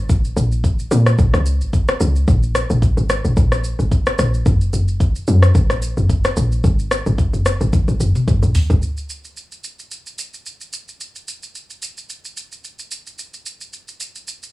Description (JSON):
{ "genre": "amapiano", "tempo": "110 BPM", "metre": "4/4", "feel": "swing 55% on 16ths", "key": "unclear", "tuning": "A4 = 436 Hz", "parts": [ { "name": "woody log drum bass", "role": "bass", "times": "0.0-8.8 s", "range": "Gb1 to Bb2", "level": "-16 LUFS", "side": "equal", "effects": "none" }, { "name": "afro-pop drum kit", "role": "drums", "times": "0.1-14.5 s", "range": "hi-hat, kick drum, rim click, shaker, toms", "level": "-19 LUFS", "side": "equal", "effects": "none" } ], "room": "little or no reverb", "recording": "dry, gritty hardware recording, small room ambience", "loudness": "-14 LUFS", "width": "side -18 dB against mid", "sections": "0.0-8.8 A section; 8.8-14.5 B section", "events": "drop 0.0-8.8; drum fill 7.7-8.8", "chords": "none", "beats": "| 0.10 0.64 1.19 1.73 | 2.28 2.82 3.37 3.91 | 4.46 5.00 5.55 6.09 | 6.64 7.19 7.73 8.28 | 8.82 9.37 9.91 10.46 | 11.00 11.55 12.10 12.64 | 13.19 13.73 14.28" }